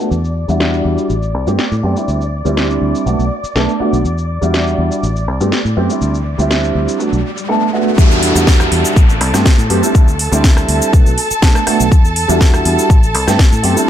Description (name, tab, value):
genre	filtered disco house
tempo	122 BPM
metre	4/4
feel	straight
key	A dorian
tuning	A4 = 440 Hz
part	dark concert grand piano	accompaniment	0.0-13.9 s	G3 to A4	-17 LUFS	right 2 dB	phaser, sidechain pumping, low-pass filter
part	warm studio violin section	sustained chords	0.0-13.9 s	A4 to D6	-22 LUFS	equal	sidechain pumping, low-pass filter
part	house drum kit	drums	0.0-13.9 s	cabasa, hi-hat, rim click, snare drum	-20 LUFS	equal	sidechain pumping on perc, low-pass filter on perc, low-pass filter on snare, sidechain pumping on hats, low-pass filter on hats, low-pass filter on room
part	fingered electric bass	bass	0.1-13.7 s	A1 to A2	-17 LUFS	equal	sidechain pumping, low-pass filter
part	riser and downlifter	sound effects	6.1-11.9 s	none	-22 LUFS	equal	none
part	electronic kick drum	drums	8.0-13.5 s	none	-9 LUFS	equal	none
room	light reverb, digital ambience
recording	none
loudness	-11 LUFS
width	side -10 dB against mid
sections	0.0-8.0 A section; 8.0-13.9 B section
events	filter sweep 0.0-8.0; riser 6.1-8.0; drop 8.0-13.9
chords	0.1 Em9; 1.1 Am9; 2.1 D9sus4; 3.1 Bm7; 4.0 Em9; 5.0 Am9; 6.0 D9sus4; 7.0 Bm7; 8.0 Em9; 9.0 Am9; 9.9 D9sus4; 10.9 Bm7; 11.9 Em9; 12.9 Am9